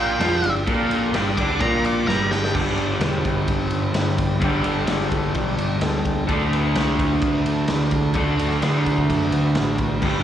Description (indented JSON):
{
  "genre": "garage rock duo or trio",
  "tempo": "128 BPM",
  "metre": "4/4",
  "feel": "straight",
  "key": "G major",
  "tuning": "A4 = 439 Hz",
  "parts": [
    { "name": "octave-fuzz lead guitar", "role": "melody", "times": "0.0-2.5 s", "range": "G5 to D6", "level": "-25 LUFS", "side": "equal", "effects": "distortion, slapback echo" },
    { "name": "combo organ", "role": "sustained chords", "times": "0.0-10.2 s", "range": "D4 to D5", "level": "-30 LUFS", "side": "left 1 dB", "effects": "none" },
    { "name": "raw garage guitar", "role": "riff", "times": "0.0-10.2 s", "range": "G2 to F4", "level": "-22 LUFS", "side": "right 1 dB", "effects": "overdrive, slapback echo" },
    { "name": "overdriven picked electric bass", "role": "bass", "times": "0.0-10.2 s", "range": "E1 to F#2", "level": "-26 LUFS", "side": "equal", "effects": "none" },
    { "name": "raw garage drum kit", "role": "drums", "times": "0.2-10.1 s", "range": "crash cymbal, kick drum, ride cymbal, snare drum", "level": "-25 LUFS", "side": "equal", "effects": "none" }
  ],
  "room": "light reverb",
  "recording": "live gig heard through the venue's PA, club reverb",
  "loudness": "-18 LUFS",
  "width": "side -10 dB against mid",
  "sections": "0.0-2.5 A section; 2.5-10.2 B section",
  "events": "lead electric guitar solo 0.0-2.5; drum fill 2.1-2.5",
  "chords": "0.0 G; 6.3 D",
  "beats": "0.20 | 0.67 1.14 1.60 2.07 | 2.54 3.01 3.48 3.95 | 4.41 4.88 5.35 5.82 | 6.29 6.75 7.22 7.69 | 8.16 8.62 9.09 9.56 | 10.03"
}